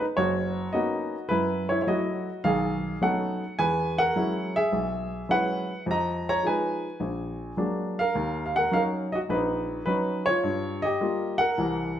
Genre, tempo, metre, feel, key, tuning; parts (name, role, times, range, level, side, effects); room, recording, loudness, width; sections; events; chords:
solo jazz; 105 BPM; 4/4; swing 69% on 8ths; Eb minor; A4 = 441 Hz
warm upright piano; solo; 0.0-12.0 s; F#1 to Bb5; -24 LUFS; equal
moderate recital hall reverb, RT60 1.2 s; recorded in a church or concert hall; -24 LUFS; side -10 dB against mid
0.0-12.0 A section
0.0 Bmaj9; 1.3 Gbm7; 2.4 B13; 3.6 E69; 5.9 Fm7b5; 7.0 Bbaug7; 8.2 Ebm7; 10.4 Gm7b5